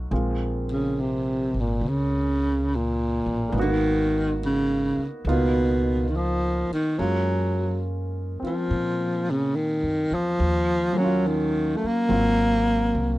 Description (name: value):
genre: jazz ballad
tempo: 70 BPM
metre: 4/4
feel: swing 68% on 8ths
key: unclear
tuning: A4 = 440 Hz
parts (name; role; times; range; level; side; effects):
- warm concert grand piano; accompaniment; 0.0-13.2 s; Gb3 to Gb4; -30 LUFS; right 1 dB; none
- upright bass; bass; 0.0-13.2 s; Ab1 to Bb2; -28 LUFS; equal; none
- mellow baritone saxophone; melody; 0.7-13.2 s; Bb2 to Bb3; -23 LUFS; equal; none
room: light reverb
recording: dry, close 1970s-style studio recording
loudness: -21 LUFS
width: side -17 dB against mid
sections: 0.0-13.2 A section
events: none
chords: 0.1 Bbm9; 3.5 Abm7; 5.2 Db13; 7.0 Gbmaj7; 10.4 Ebm9; 12.1 Ab13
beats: | 0.11 0.96 1.82 2.67 | 3.53 4.39 5.25 6.11 | 6.97 7.83 8.68 9.54 | 10.38 11.23 12.09 12.94